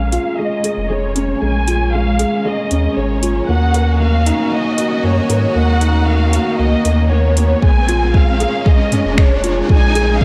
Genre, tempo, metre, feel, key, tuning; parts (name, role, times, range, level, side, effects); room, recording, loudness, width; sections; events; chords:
piano and strings electronica; 116 BPM; 4/4; straight; Bb minor; A4 = 440 Hz
dark studio violin section; melody; 0.0-10.2 s; Db5 to Ab5; -23 LUFS; equal; low-pass filter
rich symphonic string section; sustained chords; 0.0-10.2 s; Eb3 to Eb5; -27 LUFS; equal; sidechain pumping
felt-muted upright piano; riff; 0.0-10.2 s; Ab3 to Bb4; -21 LUFS; equal; tape echo
warm sub bass; bass; 0.0-10.2 s; F1 to Ab2; -19 LUFS; equal; sidechain pumping
riser; sound effects; 2.4-10.2 s; -30 LUFS; equal
deep house drum kit; drums; 0.1-10.1 s; finger snaps, hi-hat, toms; -25 LUFS; equal
electronic kick drum; drums; 7.6-10.2 s; -14 LUFS; equal
moderate concert hall reverb, RT60 1.9 s, small room ambience; dark, warm production; -15 LUFS; mono
0.0-10.2 A section
build-up 0.0-10.2; riser 2.4-10.2
0.0 Bbm7; 3.5 Ebm7; 7.6 Bbm7